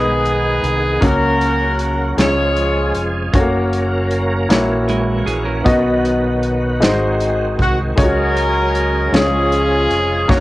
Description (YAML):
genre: slow gospel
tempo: 52 BPM (dotted quarters)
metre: 6/8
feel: straight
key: F# major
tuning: A4 = 440 Hz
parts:
  - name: warm horn section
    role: melody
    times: 0.0-3.3, 7.6-10.4 s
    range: A#3 to C#5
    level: -17 LUFS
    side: equal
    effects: cassette tape
  - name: warm grand piano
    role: accompaniment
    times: 0.0-10.4 s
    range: G#2 to D#5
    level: -18 LUFS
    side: left 1 dB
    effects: cassette tape
  - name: bright tonewheel organ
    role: sustained chords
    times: 0.0-10.4 s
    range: C#3 to A#4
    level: -24 LUFS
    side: right 2 dB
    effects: fast rotary speaker, overdrive, chorus vibrato, cassette tape
  - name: fingered electric bass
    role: bass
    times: 0.0-10.4 s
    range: E#1 to C#2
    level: -21 LUFS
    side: equal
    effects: none
  - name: natural country drum kit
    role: drums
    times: 0.3-10.4 s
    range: hi-hat, kick drum, snare drum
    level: -18 LUFS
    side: equal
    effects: cassette tape
  - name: clean electric guitar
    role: second line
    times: 4.9-5.8 s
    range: G#3 to A#4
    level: -23 LUFS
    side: right 4 dB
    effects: cassette tape
room: light reverb, small room ambience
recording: home recording on cassette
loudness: -14 LUFS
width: side -17 dB against mid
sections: 0.0-10.4 A section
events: none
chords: 0.0 G#m; 1.0 F#/C#; 2.2 C#; 3.3 F#; 4.5 F#7/A#; 5.7 B; 6.8 G#7; 8.0 C#sus4; 9.1 C#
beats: | 1.02 2.18 | 3.34 4.50 | 5.66 6.82 | 7.98 9.14 | 10.30